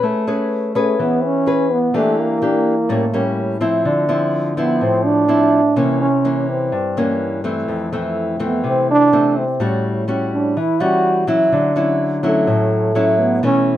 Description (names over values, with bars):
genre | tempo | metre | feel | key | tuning
bossa nova | 125 BPM | 4/4 | straight | unclear | A4 = 438 Hz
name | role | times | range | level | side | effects
nylon-string guitar | accompaniment | 0.0-13.8 s | F2 to B4 | -17 LUFS | left 1 dB | none
breathy trombone | melody | 0.8-13.8 s | A3 to F#4 | -16 LUFS | right 2 dB | none
room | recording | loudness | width
moderate studio reverb, RT60 0.8 s | minimal, uncompressed stereo recording | -15 LUFS | side -12 dB against mid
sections
0.0-13.8 A section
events
none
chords
0.0 Amaj9; 1.9 Em7b5; 2.9 A7b9; 3.9 Dm9; 5.8 C7b9; 7.7 Fmaj7; 9.6 A6; 11.5 Dmaj9